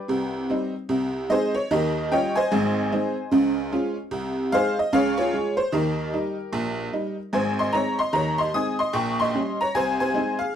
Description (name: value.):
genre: jazz, stride piano.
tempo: 149 BPM.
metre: 4/4.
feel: swing 63% on 8ths.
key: Ab major.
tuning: A4 = 441 Hz.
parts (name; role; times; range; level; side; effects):
tack piano; solo; 0.0-10.5 s; Ab1 to Eb6; -21 LUFS; equal; none.
room: moderate club reverb, RT60 0.8 s.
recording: none.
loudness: -21 LUFS.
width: side -9 dB against mid.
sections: 0.0-7.3 A section; 7.3-10.6 B section.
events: none.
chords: 0.1 Cm; 0.9 Ab/C; 1.7 Eb9; 2.5 Ab; 3.3 Db; 4.1 Ab/C; 4.9 Db; 5.7 Eb; 7.3 Ab; 8.9 Gdim/Bb; 9.7 Ab/C.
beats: 0.09 0.49 | 0.89 1.30 1.70 2.10 | 2.50 2.90 3.31 3.71 | 4.11 4.51 4.92 5.32 | 5.72 6.12 6.52 6.93 | 7.33 7.73 8.13 8.54 | 8.94 9.34 9.74 10.14.